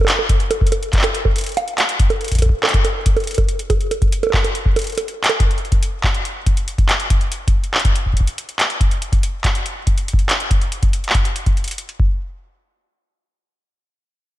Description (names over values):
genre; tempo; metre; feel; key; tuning
IDM; 141 BPM; 4/4; straight; none; none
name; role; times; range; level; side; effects
electro analog drum machine; drums; 0.0-12.0 s; bongos, handclaps, hi-hat; -20 LUFS; right 2 dB; studio reverb, ping-pong delay
electronic kick drum; drums; 0.3-12.1 s; none; -17 LUFS; equal; studio reverb
room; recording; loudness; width
light reverb; dark, warm production; -16 LUFS; side -15 dB against mid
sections
0.0-12.2 A section; 12.2-14.4 B section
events
none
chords
none